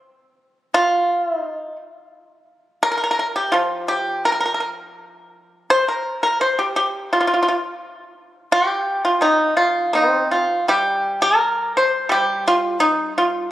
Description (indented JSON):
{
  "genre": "chinese traditional, Chinese solo plucked strings",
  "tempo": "85 BPM",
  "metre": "2/4",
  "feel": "rubato",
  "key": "unclear",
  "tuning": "A4 = 441 Hz",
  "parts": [
    { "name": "pipa", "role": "solo", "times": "0.7-13.5 s", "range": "Eb3 to C5", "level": "-17 LUFS", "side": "equal", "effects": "none" }
  ],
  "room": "moderate concert hall reverb, RT60 2.2 s",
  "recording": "recorded on a phone in the room, studio ambience, compression",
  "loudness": "-17 LUFS",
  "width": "side -14 dB against mid",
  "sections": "0.0-10.7 A section; 10.7-13.5 B section",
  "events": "none",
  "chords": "none"
}